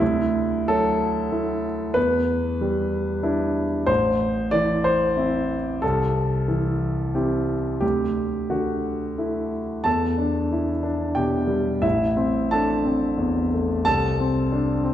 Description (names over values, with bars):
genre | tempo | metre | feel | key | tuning
neoclassical minimalist piano | 91 BPM | 3/4 | rubato | E minor | A4 = 440 Hz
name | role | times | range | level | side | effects
warm concert grand piano | solo | 0.0-14.9 s | A1 to A5 | -20 LUFS | equal | none
room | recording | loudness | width
wet recital hall reverb, RT60 1.8 s | recorded in a church or concert hall | -20 LUFS | side -11 dB against mid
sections
0.0-9.9 A section; 9.9-14.9 A section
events
none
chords
0.0 Dadd9; 2.0 Em7; 3.9 Am; 5.8 C; 7.8 Dadd9; 9.9 Em7; 11.8 Am; 13.9 C5